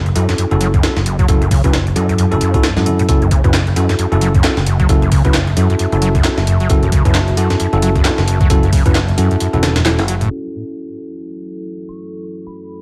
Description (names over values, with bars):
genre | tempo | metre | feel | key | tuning
breakbeat, breaks | 133 BPM | 4/4 | swing 58% on 16ths | F# minor | A4 = 438 Hz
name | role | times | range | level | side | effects
picked electric bass | bass | 0.0-10.3 s | E1 to F#2 | -18 LUFS | equal | none
overdriven acid bass | riff | 0.1-10.3 s | F#1 to F#3 | -21 LUFS | equal | distortion, analog chorus, digital delay
punchy analog drum machine | drums | 0.1-12.8 s | handclaps, hi-hat | -28 LUFS | equal | overdrive, low-pass filter on hats, low-pass filter on snare
bell-like tine electric piano | stabs | 0.2-12.8 s | C#4 to B4 | -23 LUFS | equal | low-pass filter, digital delay
breakbeat sampler-style drum kit | drums | 0.2-10.2 s | hi-hat, kick drum, snare drum | -18 LUFS | equal | none
dark analog pad | sustained chords | 4.7-12.8 s | F#3 to A5 | -30 LUFS | equal | chorus, phaser, sidechain pumping
glassy synth bell | melody | 11.9-12.8 s | B5 to C#6 | -50 LUFS | equal | chorus, tremolo, telephone sound, vintage 12-bit sampler grit
room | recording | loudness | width
little or no reverb | vinyl crackle, low-pass filter | -14 LUFS | mono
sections
0.0-10.3 A section; 10.3-12.8 B section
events
filter sweep on tine electric piano 10.3-12.8; filter sweep 10.3-12.8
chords
0.0 F#m7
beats
0.38 0.83 | 1.28 1.73 2.19 2.64 | 3.09 3.54 3.99 4.44 | 4.89 5.34 5.79 6.25 | 6.70 7.15 7.60 8.05 | 8.50 8.95 9.40 9.86 | 10.31 10.76 11.21 11.66 | 12.11 12.56